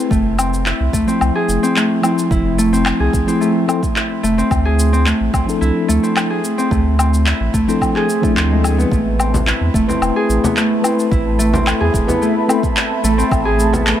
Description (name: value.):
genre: organic downtempo.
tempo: 109 BPM.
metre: 4/4.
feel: straight.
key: A harmonic minor.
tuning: A4 = 440 Hz.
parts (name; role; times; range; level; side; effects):
mellow tine electric piano; accompaniment; 0.0-12.6 s; F3 to B4; -22 LUFS; left 2 dB; medium stereo tremolo, sidechain pumping, digital delay.
Celtic harp; arpeggios; 0.0-14.0 s; G#3 to G#4; -17 LUFS; left 1 dB; vintage 12-bit sampler grit, low-pass filter, digital delay.
warm sub bass; bass; 0.1-13.9 s; E1 to E2; -18 LUFS; right 1 dB; none.
electronic kick drum; drums; 0.1-13.4 s; none; -20 LUFS; right 1 dB; none.
electronic shaker, woodblock and handclaps; drums; 0.1-14.0 s; none; -22 LUFS; left 1 dB; none.
swell; sound effects; 8.0-8.9 s; none; -31 LUFS; right 2 dB; none.
warm analog pad; sustained chords; 8.9-14.0 s; A3 to B5; -24 LUFS; right 1 dB; chorus, sidechain pumping.
frame drum; percussion; 9.3-13.8 s; none; -22 LUFS; left 2 dB; none.
room: light reverb.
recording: none.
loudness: -13 LUFS.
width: side -10 dB against mid.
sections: 0.0-14.0 A section.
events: swell 8.0-8.9.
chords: 0.1 Fmaj7; 4.5 Dm7; 8.9 Amadd9.